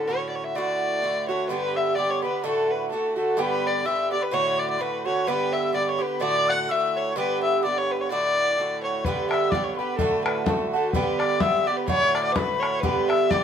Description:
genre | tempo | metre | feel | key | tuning
celtic folk, Celtic polka | 127 BPM | 2/4 | swing 56% on 8ths | D major | A4 = 442 Hz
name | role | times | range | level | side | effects
dark fiddle | melody | 0.0-13.4 s | A4 to F#5 | -24 LUFS | left 2 dB | none
Irish bouzouki | accompaniment | 0.0-13.4 s | G2 to G4 | -26 LUFS | right 5 dB | none
bright wooden flute | second line | 1.3-13.4 s | G5 to F#6 | -30 LUFS | left 3 dB | none
bodhran | percussion | 9.0-13.4 s | none | -28 LUFS | left 3 dB | none
room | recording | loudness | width
moderate studio reverb, RT60 0.7 s | minimal, uncompressed stereo recording | -21 LUFS | side -8 dB against mid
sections
0.0-1.5 A section; 1.5-9.0 B section; 9.0-13.4 B section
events
none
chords
0.0 Dmaj7; 0.6 D; 1.5 G; 2.4 D; 3.4 G; 4.3 D; 5.3 G; 6.2 D; 7.2 G; 8.1 D; 9.0 G; 10.0 D; 10.9 G; 11.9 D; 12.8 G

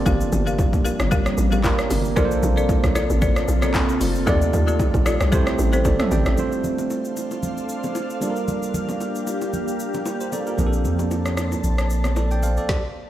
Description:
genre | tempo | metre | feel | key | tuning
amapiano | 114 BPM | 4/4 | swing 55% on 16ths | unclear | A4 = 440 Hz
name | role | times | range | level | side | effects
bell-like tine electric piano | accompaniment | 0.0-12.8 s | F3 to G5 | -25 LUFS | right 4 dB | none
glassy FM pad | sustained chords | 0.0-12.7 s | C3 to A5 | -28 LUFS | equal | ensemble chorus, built-in reverb, sidechain pumping
hollow log drum bass | bass | 0.0-6.4 s | F1 to Eb2 | -22 LUFS | equal | none
folk marimba with medium hard mallets | stabs | 0.1-5.8 s | F4 to F5 | -27 LUFS | left 5 dB | digital delay
deep house drum kit | drums | 0.1-12.8 s | handclaps, hi-hat, kick drum, rim click, shaker, snare drum, toms | -24 LUFS | equal | none
congas and bongos | percussion | 0.1-12.6 s | none | -30 LUFS | left 1 dB | none
punchy sub bass | bass | 10.6-12.6 s | Bb1 to F2 | -22 LUFS | equal | none
room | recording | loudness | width
light reverb | played on a big sound system in a bare room, stone room reverb | -19 LUFS | side -12 dB against mid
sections
0.0-6.4 A section; 6.4-13.1 B section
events
drop 0.0-6.4; stop 12.7-13.1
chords
0.0 Gm7; 2.2 Bbmaj9; 4.3 Ebmaj9#11; 5.3 Am7; 6.4 Dm7; 8.2 Gm7; 10.6 Bbmaj9

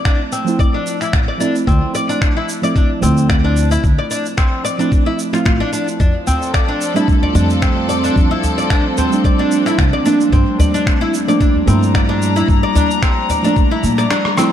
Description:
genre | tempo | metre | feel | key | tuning
organic downtempo | 111 BPM | 4/4 | swing 54% on 16ths | D minor | A4 = 440 Hz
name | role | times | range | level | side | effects
muted felt-like synth keys | accompaniment | 0.0-14.5 s | F3 to E4 | -19 LUFS | right 3 dB | chorus, sidechain pumping, digital delay
oud | arpeggios | 0.0-14.5 s | C4 to D5 | -20 LUFS | left 2 dB | low-pass filter, digital delay
electronic finger snaps, shaker and rim click | drums | 0.1-14.5 s | none | -24 LUFS | equal | none
electronic kick drum | drums | 0.1-13.7 s | none | -15 LUFS | equal | none
upright bass | bass | 1.1-14.0 s | A1 to Bb2 | -16 LUFS | equal | none
rich studio string section | sustained chords | 6.0-14.5 s | F3 to Bb5 | -20 LUFS | left 1 dB | sidechain pumping
udu | percussion | 6.3-13.4 s | none | -17 LUFS | equal | none
room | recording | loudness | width
moderate lush hall reverb, RT60 1.8 s | dark, warm production | -13 LUFS | side -10 dB against mid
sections
0.0-14.5 A section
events
kick drops out 14.1-14.5; drum fill 14.1-14.5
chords
0.0 Dm7; 6.0 F6; 10.3 Gm7

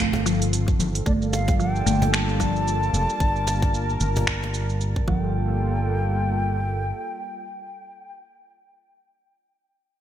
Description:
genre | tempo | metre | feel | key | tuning
organic downtempo | 112 BPM | 4/4 | swing 57% on 16ths | G minor | A4 = 440 Hz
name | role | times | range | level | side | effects
hollow bansuri | melody | 0.0-8.1 s | D5 to A5 | -30 LUFS | equal | ping-pong delay
warm analog pad | sustained chords | 0.0-8.1 s | Eb3 to Bb4 | -31 LUFS | equal | chorus, tremolo, sidechain pumping
mallet-like synth pluck | arpeggios | 0.0-5.6 s | F3 to A3 | -27 LUFS | equal | chorus, ping-pong delay
mellow fretless electric bass | bass | 0.0-6.9 s | F1 to G1 | -24 LUFS | equal | sidechain pumping
organic electronic drum kit | drums | 0.0-5.1 s | congas, finger snaps, hi-hat, shaker | -27 LUFS | equal | gated reverb
cajon | percussion | 0.1-4.5 s | none | -29 LUFS | left 1 dB | none
electronic kick drum | drums | 0.7-5.2 s | none | -24 LUFS | equal | none
drifting glass-harmonics texture | texture | 1.5-5.4 s | D4 to D5 | -37 LUFS | left 2 dB | chorus, built-in reverb
room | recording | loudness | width
moderate lush hall reverb, RT60 2.2 s | bright 1980s-style digital production | -21 LUFS | side -11 dB against mid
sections
0.0-1.1 A section; 1.1-5.3 B section; 5.3-9.6 C section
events
filter sweep on fretless electric bass 1.1-5.3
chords
0.0 F7; 1.1 Gm9

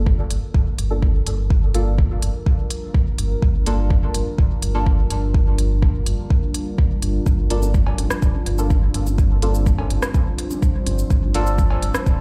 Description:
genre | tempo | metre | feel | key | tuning
dub techno | 125 BPM | 4/4 | straight | G minor | A4 = 440 Hz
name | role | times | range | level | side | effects
deep dark ambient pad | sustained chords | 0.5-12.2 s | G3 to C5 | -32 LUFS | equal | chorus, built-in reverb, sidechain pumping
round analog bass | bass | 0.0-12.2 s | D1 to G1 | -23 LUFS | equal | tube saturation, sidechain pumping
electronic kick drum | drums | 0.1-12.2 s | none | -20 LUFS | equal | none
deep house drum kit | drums | 0.3-12.2 s | hi-hat, rim click, shaker | -30 LUFS | equal | dub echo
deep mellow chord stab | stabs | 0.9-11.5 s | Bb3 to A4 | -31 LUFS | equal | chorus, phaser, sidechain pumping, dub echo
electronic toms and cowbell | percussion | 7.3-12.0 s | none | -38 LUFS | equal | none
room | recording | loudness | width
little or no reverb | played on a big sound system in a bare room, large studio reverb | -19 LUFS | mono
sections
0.0-12.2 A section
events
none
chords
0.0 Gm7

